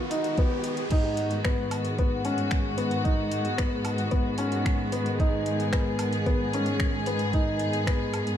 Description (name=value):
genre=piano and strings electronica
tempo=112 BPM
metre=4/4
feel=straight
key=G# minor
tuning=A4 = 440 Hz
part: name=warm studio string section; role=sustained chords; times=0.0-8.4 s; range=D#3 to G#4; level=-31 LUFS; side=left 1 dB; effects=sidechain pumping
part: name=rich studio cello section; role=bass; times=0.0-8.4 s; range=G#2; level=-31 LUFS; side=equal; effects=tube saturation, sidechain pumping, high-pass filter
part: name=riser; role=sound effects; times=0.0-0.9 s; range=none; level=-36 LUFS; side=right 2 dB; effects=none
part: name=felt-muted upright piano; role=riff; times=0.1-8.3 s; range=B3 to D#4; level=-30 LUFS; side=left 1 dB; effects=ping-pong delay
part: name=deep house drum kit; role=drums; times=0.1-8.4 s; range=crash cymbal, finger snaps, hi-hat, woodblock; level=-37 LUFS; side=equal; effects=none
part: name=electronic kick drum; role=drums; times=0.4-8.0 s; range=none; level=-26 LUFS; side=equal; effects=none
room=light reverb, digital ambience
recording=dark, warm production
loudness=-24 LUFS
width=side -10 dB against mid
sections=0.9-8.4 A section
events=riser 0.0-0.9; drop 0.9-8.4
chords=0.0 G#m7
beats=0.37 | 0.91 1.45 1.98 2.52 | 3.05 3.59 4.12 4.66 | 5.20 5.73 6.27 6.80 | 7.34 7.87